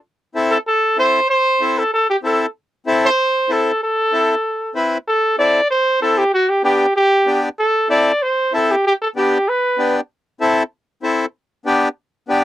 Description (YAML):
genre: latin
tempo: 191 BPM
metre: 4/4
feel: straight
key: A minor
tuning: A4 = 440 Hz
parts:
  - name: accordion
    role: accompaniment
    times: 0.3-12.4 s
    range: B3 to B4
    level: -17 LUFS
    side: left 2 dB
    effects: none
  - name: warm trumpet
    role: melody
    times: 0.5-10.0 s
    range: F#4 to D5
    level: -15 LUFS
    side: right 1 dB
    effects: none
room: light reverb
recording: dry, close 1970s-style studio recording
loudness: -15 LUFS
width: side -13 dB against mid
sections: 0.0-5.1 A section; 5.1-12.4 B section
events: none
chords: 0.0 Am; 6.3 G; 7.6 Am; 8.8 G; 10.1 Am; 11.4 G